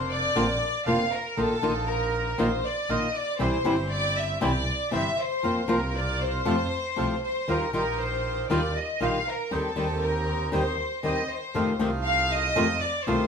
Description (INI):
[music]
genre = tango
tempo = 118 BPM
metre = 4/4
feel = rubato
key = unclear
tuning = A4 = 440 Hz
[part]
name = rich studio violin section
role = second line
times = 0.0-13.3 s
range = A4 to F5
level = -27 LUFS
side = equal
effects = none
[part]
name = bandoneon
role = stabs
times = 0.0-13.3 s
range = A3 to Bb4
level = -34 LUFS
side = right 5 dB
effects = none
[part]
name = dark double bass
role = bass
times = 0.0-13.3 s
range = F1 to F2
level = -31 LUFS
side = right 1 dB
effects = none
[part]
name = flamenco guitar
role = accompaniment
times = 0.4-13.2 s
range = C3 to F4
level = -27 LUFS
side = left 2 dB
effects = none
[sound]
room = wet studio reverb, RT60 0.8 s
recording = band playing live in one room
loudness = -24 LUFS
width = side -6 dB against mid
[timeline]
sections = 0.0-13.3 A section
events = violin section solo 0.0-13.3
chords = 0.0 Bbadd9; 1.4 Ebsus2/Bb; 3.4 C; 5.4 Fsus4; 6.5 F; 7.5 Ebadd9; 9.5 Cm/Eb; 11.5 F7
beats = 0.35 0.86 | 1.37 1.88 2.39 2.89 | 3.40 3.91 4.42 4.92 | 5.43 5.94 6.46 6.97 | 7.48 7.99 8.50 9.01 | 9.52 10.03 10.53 11.04 | 11.55 12.06 12.56 13.07